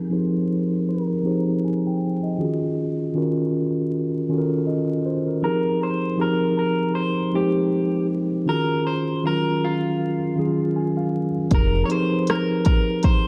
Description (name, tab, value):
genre	lo-fi hip hop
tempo	79 BPM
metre	4/4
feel	swing 57% on 16ths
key	F minor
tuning	A4 = 441 Hz
part	electric guitar through a small old amp	melody	0.0-13.3 s	F4 to Db5	-29 LUFS	equal	spring reverb, low-pass filter
part	mellow tine electric piano	accompaniment	0.0-13.3 s	Eb3 to Ab5	-24 LUFS	equal	cassette tape, low-pass filter
part	sub bass with octave	bass	11.5-11.8 s	F1	-25 LUFS	equal	none
part	organic electronic drum kit	drums	11.5-13.2 s	hi-hat, kick drum, rim click	-21 LUFS	equal	none
room	moderate plate reverb, RT60 2.3 s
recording	dark, warm production, vinyl crackle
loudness	-22 LUFS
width	mono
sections	0.0-11.5 A section; 11.5-13.3 B section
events	filter sweep 0.0-11.5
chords	0.0 Fm11; 2.4 Ebm11; 5.4 Fm11; 8.5 Ebm11; 11.5 Fm11